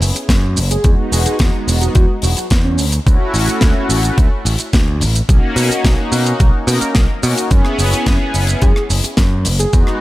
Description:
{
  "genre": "nu-disco, nu disco",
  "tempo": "108 BPM",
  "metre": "4/4",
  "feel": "straight",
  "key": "unclear",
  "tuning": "A4 = 440 Hz",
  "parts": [
    { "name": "modern bright picked electric bass", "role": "bass", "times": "0.0-9.8 s", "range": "E1 to B2", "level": "-16 LUFS", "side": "equal", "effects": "none" },
    { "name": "tight metal drum kit", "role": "drums", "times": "0.0-10.0 s", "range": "hi-hat, rim click, shaker, snare drum", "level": "-20 LUFS", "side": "left 1 dB", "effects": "none" },
    { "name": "electronic kick drum", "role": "drums", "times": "0.3-9.8 s", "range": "none", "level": "-13 LUFS", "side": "equal", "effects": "none" },
    { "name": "wide unison lead", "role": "melody", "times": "0.7-2.8, 8.6-9.8 s", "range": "C#4 to G#4", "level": "-23 LUFS", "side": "right 1 dB", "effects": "analog delay" },
    { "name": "warm analog pad", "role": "accompaniment", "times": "0.8-10.0 s", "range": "G#3 to A#4", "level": "-20 LUFS", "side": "equal", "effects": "chorus, tape echo" }
  ],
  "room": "studio reverb",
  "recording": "none",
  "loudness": "-12 LUFS",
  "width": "side -17 dB against mid",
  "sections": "0.0-10.0 A section",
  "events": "none",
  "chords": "0.0 F#sus2; 0.8 Emaj7; 2.8 Dmaj7; 5.3 Bmaj9; 7.5 F#9sus4"
}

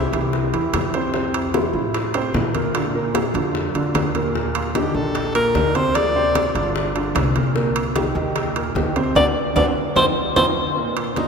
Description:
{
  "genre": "Afro-Cuban jazz",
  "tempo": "150 BPM",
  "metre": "4/4",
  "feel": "straight",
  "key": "unclear",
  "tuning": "A4 = 440 Hz",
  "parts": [
    { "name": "breathy alto saxophone", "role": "melody", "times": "0.0-0.3, 4.6-6.8, 9.2-11.3 s", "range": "Eb4 to D5", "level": "-22 LUFS", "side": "left 1 dB", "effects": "none" },
    { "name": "warm grand piano", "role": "accompaniment", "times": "0.0-11.3 s", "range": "Bb2 to C5", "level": "-23 LUFS", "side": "right 2 dB", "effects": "none" },
    { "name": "upright bass", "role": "bass", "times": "0.0-10.5 s", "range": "G1 to Bb2", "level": "-26 LUFS", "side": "left 1 dB", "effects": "none" },
    { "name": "bongos", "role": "percussion", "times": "0.1-10.5 s", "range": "none", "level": "-27 LUFS", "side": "left 5 dB", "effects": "none" },
    { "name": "congas", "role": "percussion", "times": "0.1-11.3 s", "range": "none", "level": "-28 LUFS", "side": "left 2 dB", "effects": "none" },
    { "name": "timbales", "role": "percussion", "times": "0.1-11.3 s", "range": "none", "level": "-27 LUFS", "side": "right 5 dB", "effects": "none" }
  ],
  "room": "wet cathedral reverb, RT60 4.9 s",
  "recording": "recorded in a church or concert hall",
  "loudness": "-18 LUFS",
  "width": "side -5 dB against mid",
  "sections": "0.0-10.8 A section",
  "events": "band accent 9.2-10.8; drum fill 10.4-10.8",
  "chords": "0.0 C; 1.1 Fmaj7; 2.7 Bb; 4.3 Eb5; 6.0 Dm7b5; 6.8 G5; 7.6 Cm7; 9.2 D7; 10.0 F5; 10.8 Bb"
}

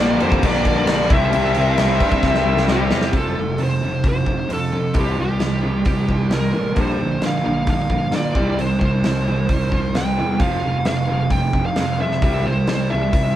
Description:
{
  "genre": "quiet-loud alternative rock",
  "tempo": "132 BPM",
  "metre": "4/4",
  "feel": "straight",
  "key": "unclear",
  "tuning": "A4 = 444 Hz",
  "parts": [
    { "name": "high-gain lead guitar", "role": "melody", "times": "0.0-13.4 s", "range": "G4 to G5", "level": "-24 LUFS", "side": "equal", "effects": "distortion" },
    { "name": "hand-pumped harmonium", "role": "sustained chords", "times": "0.0-3.1 s", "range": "G4 to C6", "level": "-30 LUFS", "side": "right 2 dB", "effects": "none" },
    { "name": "fuzz guitar", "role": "riff", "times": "0.0-3.1 s", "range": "Bb2 to E4", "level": "-21 LUFS", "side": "left 4 dB", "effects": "distortion" },
    { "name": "scooped high-gain guitar", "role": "riff", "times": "0.0-13.3 s", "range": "F2 to E4", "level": "-24 LUFS", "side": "right 3 dB", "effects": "distortion" },
    { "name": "fuzz picked electric bass", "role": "bass", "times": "0.0-13.3 s", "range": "F1 to Bb2", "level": "-23 LUFS", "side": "equal", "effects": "overdrive" },
    { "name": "huge arena drum kit", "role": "drums", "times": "0.2-13.2 s", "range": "crash cymbal, hi-hat, kick drum, snare drum", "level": "-22 LUFS", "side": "equal", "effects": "none" },
    { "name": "electric guitar through a small old amp", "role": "arpeggios", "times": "3.1-13.3 s", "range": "F2 to G3", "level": "-28 LUFS", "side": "equal", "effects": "none" }
  ],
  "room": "moderate studio reverb, RT60 0.7 s",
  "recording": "band playing live in one room, vinyl crackle",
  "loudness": "-16 LUFS",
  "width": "side -12 dB against mid",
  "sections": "0.0-3.1 A section; 3.1-13.4 B section",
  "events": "drum fill 2.2-3.1",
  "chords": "0.0 Gm7/Bb; 1.1 C; 3.1 F; 5.0 C; 6.8 Gm7/Bb; 8.4 C; 10.4 F5; 12.2 C"
}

